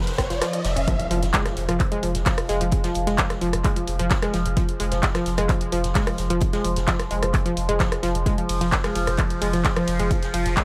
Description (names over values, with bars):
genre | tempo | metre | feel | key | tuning
driving peak-time techno | 130 BPM | 4/4 | straight | F minor | A4 = 438 Hz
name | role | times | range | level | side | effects
analog pluck | riff | 0.0-10.6 s | F3 to Db4 | -29 LUFS | equal | chorus, sidechain pumping, tape echo
open jazz drum kit | drums | 0.0-10.6 s | hi-hat, snare drum | -42 LUFS | equal | none
riser and impact | sound effects | 0.0-2.7 s | none | -33 LUFS | equal | none
punchy analog drum machine | drums | 0.1-10.6 s | handclaps, hi-hat, ride cymbal, rim click | -30 LUFS | equal | sidechain pumping on hats, sidechain pumping on cymbals
saturated sub bass | bass | 0.2-10.6 s | F1 | -28 LUFS | equal | overdrive, sidechain pumping, low-pass filter
electronic kick drum | drums | 0.2-10.6 s | none | -26 LUFS | equal | none
overtone-sweeping drone | drone | 1.5-10.6 s | F3 | -33 LUFS | equal | chorus, built-in reverb, phaser, sidechain pumping
room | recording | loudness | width
light reverb, digital ambience | none | -23 LUFS | mono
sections
0.9-10.6 A section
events
riser 0.0-0.9; kick drops out 0.4-0.9; band accent 0.4; drop 0.9-10.6; impact 0.9-2.7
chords
0.0 F5; 0.9 Fm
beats
0.41 | 0.88 1.34 1.80 2.26 | 2.72 3.18 3.65 4.11 | 4.57 5.03 5.49 5.95 | 6.42 6.88 7.34 7.80 | 8.26 8.72 9.18 9.65 | 10.11 10.57